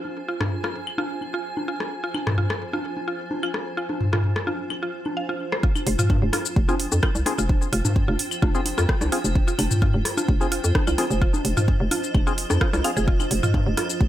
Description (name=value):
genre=minimal techno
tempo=129 BPM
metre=4/4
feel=straight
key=F minor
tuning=A4 = 440 Hz
part: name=granular cloud pad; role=texture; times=0.0-14.1 s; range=F4 to Ab5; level=-32 LUFS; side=right 2 dB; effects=built-in reverb, sidechain pumping
part: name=booming analog drum machine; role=percussion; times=0.1-13.9 s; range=claves, congas, rim click, toms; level=-26 LUFS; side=left 1 dB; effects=overdrive
part: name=mallet-like synth pluck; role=riff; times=0.3-13.8 s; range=F4 to F5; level=-30 LUFS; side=right 1 dB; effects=chorus, sidechain pumping, digital delay
part: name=electronic kick drum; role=drums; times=5.6-14.1 s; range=none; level=-21 LUFS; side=equal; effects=none
part: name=house drum kit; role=drums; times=5.8-14.0 s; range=hi-hat, rim click, shaker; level=-29 LUFS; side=left 1 dB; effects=none
part: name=hollow knocking FM bass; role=bass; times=5.9-14.1 s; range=F1 to F2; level=-24 LUFS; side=equal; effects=sidechain pumping
part: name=percussive organ stab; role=stabs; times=6.7-12.9 s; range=C4 to Ab4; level=-30 LUFS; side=left 3 dB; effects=analog chorus, digital delay
room=light reverb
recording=none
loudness=-21 LUFS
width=side -13 dB against mid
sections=0.0-5.6 A section; 5.6-14.1 B section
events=filter sweep on synth arpeggio sound 0.0-5.6; drop 5.6-14.1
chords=0.0 Fm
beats=| 0.05 0.52 0.98 1.45 | 1.91 2.38 2.84 3.31 | 3.77 4.24 4.70 5.17 | 5.63 6.10 6.56 7.03 | 7.49 7.96 8.42 8.89 | 9.35 9.82 10.29 10.75 | 11.21 11.68 12.14 12.61 | 13.07 13.54 14.01